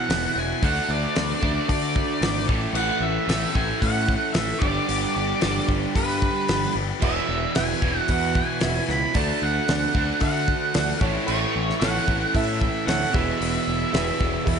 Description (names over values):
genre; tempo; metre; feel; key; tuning
classic rock; 113 BPM; 4/4; straight; unclear; A4 = 440 Hz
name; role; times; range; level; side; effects
octave-fuzz lead guitar; melody; 0.0-14.6 s; B4 to B5; -26 LUFS; right 2 dB; distortion, slapback echo
cranked stack guitar; riff; 0.0-14.6 s; E2 to A4; -29 LUFS; left 11 dB; overdrive, slapback echo
distorted electric guitar; riff; 0.0-14.6 s; E2 to D4; -28 LUFS; right 11 dB; distortion, slapback echo
growling fingered electric bass; bass; 0.1-14.6 s; E1 to D3; -28 LUFS; left 1 dB; overdrive
damped 70s drum kit; drums; 0.1-14.6 s; crash cymbal, hi-hat, kick drum, snare drum; -26 LUFS; left 1 dB; none
bright upright piano; accompaniment; 7.0-14.6 s; E4 to E5; -32 LUFS; right 8 dB; none
room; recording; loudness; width
moderate recital hall reverb, RT60 1.6 s; big arena sound, nothing above 10.4 kHz; -20 LUFS; side -6 dB against mid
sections
0.0-14.6 A section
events
none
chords
0.0 Esus2; 0.6 D; 2.5 A; 4.6 G; 7.0 Esus2; 9.2 D; 11.0 A; 13.1 E